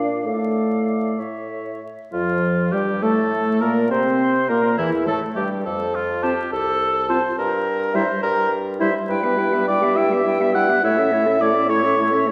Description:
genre	quick classical-period movement for wind quintet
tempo	69 BPM (dotted quarters)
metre	6/8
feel	rubato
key	unclear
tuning	A4 = 440 Hz
part	silver concert flute	melody	0.0-12.3 s	E4 to A5	-30 LUFS	equal	none
part	warm oboe	second line	0.0-12.3 s	E4 to F#5	-24 LUFS	equal	none
part	dark clarinet	accompaniment	0.0-12.3 s	E3 to A4	-27 LUFS	equal	none
part	mellow French horn	accompaniment	0.0-12.3 s	E3 to C#4	-28 LUFS	equal	none
part	mellow bassoon	bass	0.0-12.3 s	C2 to C3	-27 LUFS	equal	none
room	wet scoring stage reverb, RT60 1.6 s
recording	recorded in a church or concert hall, vinyl crackle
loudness	-20 LUFS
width	mono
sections	0.0-2.1 A section; 2.1-12.3 B section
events	none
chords	0.3 Dm/A; 2.1 Gm9/F; 3.9 C; 5.7 F; 7.4 Edim/G (rootless); 9.1 Em/G; 10.8 A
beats	| 0.26 1.20 | 2.13 3.02 | 3.90 4.78 | 5.65 6.51 | 7.38 8.23 | 9.09 9.96 | 10.83 11.69

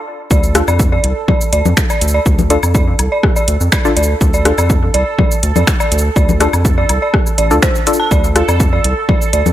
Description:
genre	minimal techno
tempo	123 BPM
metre	4/4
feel	straight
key	D minor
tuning	A4 = 440 Hz
part	dark detuned synth bell	riff	0.3-9.4 s	C5 to A5	-19 LUFS	right 1 dB	chorus, tremolo, sidechain pumping, dub echo
part	round analog bass	bass	0.3-9.5 s	A1 to F2	-15 LUFS	equal	tube saturation, sidechain pumping
part	electronic kick drum	drums	0.3-9.2 s	none	-14 LUFS	equal	overdrive, high-pass filter on kick, high-pass filter on room
part	house drum kit	drums	0.3-9.5 s	finger snaps, hi-hat, shaker	-19 LUFS	equal	overdrive
part	bubbling stepped-filter texture	texture	0.3-9.5 s	A4	-24 LUFS	right 5 dB	chorus, built-in reverb, sidechain pumping
part	wavetable chord stab	stabs	0.6-8.4 s	D4 to A4	-19 LUFS	left 2 dB	cassette tape, dub echo
part	electronic rim click, woodblock and congas	percussion	0.6-9.5 s	none	-20 LUFS	left 4 dB	dub echo
room	digital ambience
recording	none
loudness	-11 LUFS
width	side -13 dB against mid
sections	0.3-9.5 A section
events	stop 0.0-0.3; drop 0.3-9.5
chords	0.3 Dm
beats	| 0.31 0.80 1.28 1.77 | 2.26 2.75 3.23 3.72 | 4.21 4.70 5.19 5.67 | 6.16 6.65 7.14 7.62 | 8.11 8.60 9.09

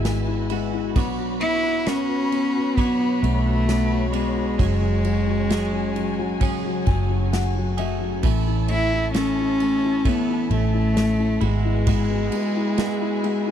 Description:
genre	pop ballad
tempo	66 BPM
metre	4/4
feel	straight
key	A major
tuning	A4 = 436 Hz
part	felt-muted upright piano	accompaniment	0.0-13.5 s	F#3 to G#5	-27 LUFS	left 17 dB	none
part	muted studio string section	sustained chords	0.0-13.5 s	E4 to B5	-33 LUFS	left 3 dB	none
part	twelve-string electric guitar	arpeggios	0.0-13.5 s	F#2 to C#5	-30 LUFS	right 21 dB	none
part	vintage muted fingered electric bass	bass	0.0-12.3 s	F#1 to B1	-24 LUFS	right 1 dB	none
part	unplugged drum kit	drums	0.0-13.4 s	kick drum, ride cymbal, snare drum	-28 LUFS	right 1 dB	none
part	warm cello	melody	1.4-13.5 s	G#3 to E4	-23 LUFS	equal	slapback echo
room	little or no reverb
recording	dry, close 1970s-style studio recording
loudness	-19 LUFS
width	side -9 dB against mid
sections	0.0-13.5 A section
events	felt piano fill 6.4-8.2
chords	0.0 Eadd9/G#; 1.0 Bmadd9; 4.6 F#madd9; 8.2 A; 11.4 Eadd9/G#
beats	0.05 | 0.96 1.87 2.78 3.69 | 4.60 5.51 6.42 7.33 | 8.23 9.14 10.05 10.96 | 11.87 12.78

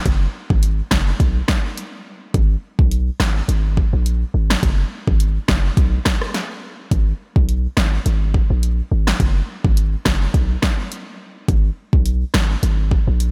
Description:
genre	dancehall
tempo	105 BPM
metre	4/4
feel	swing 56% on 16ths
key	G# minor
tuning	A4 = 440 Hz
part	warm 808-style bass	bass	0.1-13.3 s	F#1 to B1	-20 LUFS	equal	none
part	deep house drum kit	drums	0.1-13.3 s	hi-hat, kick drum, rim click, snare drum	-21 LUFS	equal	none
room	little or no reverb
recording	none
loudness	-19 LUFS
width	mono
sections	0.0-13.3 A section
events	none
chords	none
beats	| 0.06 0.63 1.20 1.77 | 2.34 2.92 3.49 4.06 | 4.63 5.20 5.77 6.34 | 6.92 7.49 8.06 8.63 | 9.20 9.77 10.34 10.91 | 11.49 12.06 12.63 13.20

